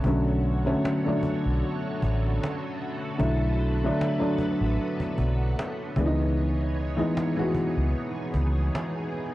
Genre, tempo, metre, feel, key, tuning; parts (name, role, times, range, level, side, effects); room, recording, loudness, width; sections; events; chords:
lo-fi hip hop; 76 BPM; 4/4; swing 55% on 16ths; B dorian; A4 = 440 Hz
dark upright piano; accompaniment; 0.0-9.3 s; D3 to F#4; -27 LUFS; left 1 dB; low-pass filter
string machine, full ensemble; sustained chords; 0.0-9.3 s; D3 to D#5; -34 LUFS; right 2 dB; phaser, ensemble chorus, low-pass filter
vintage muted fingered electric bass; bass; 0.0-8.7 s; A1 to C#2; -25 LUFS; equal; transformer saturation
cajon; drums; 0.0-9.2 s; -33 LUFS; equal
light reverb, small room ambience; dry, gritty hardware recording, cassette tape; -24 LUFS; side -16 dB against mid
0.0-9.3 A section
0.0 Bm9; 6.0 C#m9